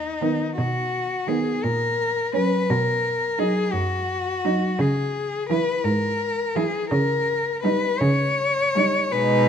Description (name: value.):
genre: classical, lyrical piece for cello ensemble.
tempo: 56 BPM (dotted quarters).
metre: 6/8.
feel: uneven beats, rubato.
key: unclear.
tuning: A4 = 440 Hz.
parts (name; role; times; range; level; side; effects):
rich cello; melody; 0.0-9.5 s; D#4 to C#5; -23 LUFS; left 4 dB; none.
rich cello; bass; 0.0-9.5 s; D#2 to C#3; -25 LUFS; right 2 dB; none.
rich cello; second line; 0.2-9.5 s; B3 to E4; -27 LUFS; right 8 dB; none.
warm cello; accompaniment; 0.2-9.5 s; D#3 to G#3; -27 LUFS; equal; none.
room: moderate recital hall reverb, RT60 1.4 s.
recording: none.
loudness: -20 LUFS.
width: side -8 dB against mid.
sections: 0.0-9.5 A section.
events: none.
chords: 0.0 G#m (rootless); 0.6 B; 1.6 F#/A#; 2.7 B; 4.8 C#m; 6.9 D#7/C#.